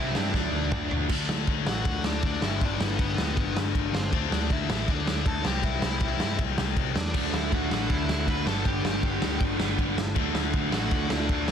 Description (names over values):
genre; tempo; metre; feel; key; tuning
punk rock; 159 BPM; 4/4; straight; D mixolydian; A4 = 440 Hz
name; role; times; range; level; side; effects
high-gain lead guitar; melody; 0.0-11.5 s; B3 to B5; -35 LUFS; equal; distortion, tape echo
distorted electric guitar; riff; 0.0-11.5 s; G2 to D4; -31 LUFS; left 16 dB; distortion
distorted electric guitar; riff; 0.0-1.1, 7.1-11.5 s; G2 to E4; -32 LUFS; right 14 dB; distortion
overdriven picked electric bass; bass; 0.0-11.5 s; G1 to G2; -31 LUFS; equal; none
raw garage drum kit; drums; 0.2-11.5 s; crash cymbal, kick drum, ride cymbal, snare drum, toms; -28 LUFS; right 1 dB; none
room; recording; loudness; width
little or no reverb; dense, heavily limited modern master; -24 LUFS; side -8 dB against mid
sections
0.0-1.1 A section; 1.1-11.5 A section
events
drum fill 0.3-1.1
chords
0.3 D; 2.4 G; 4.1 D5; 5.4 C; 7.1 D; 8.5 G; 10.2 D